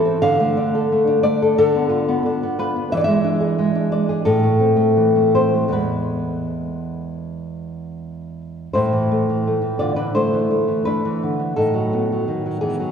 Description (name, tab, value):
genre	romantic piece for solo classical guitar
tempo	78-91 BPM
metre	4/4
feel	rubato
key	A minor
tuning	A4 = 441 Hz
part	nylon-string guitar	solo	0.0-12.9 s	E2 to F5	-17 LUFS	equal	none
room	wet church reverb, RT60 2.7 s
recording	recorded in a church or concert hall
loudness	-16 LUFS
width	side -7 dB against mid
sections	0.0-8.7 A section; 8.7-12.9 B section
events	none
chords	0.2 Dm; 1.6 Bdim/D; 2.9 E7; 4.3 Am; 5.7 E; 8.7 Am; 11.6 B7/A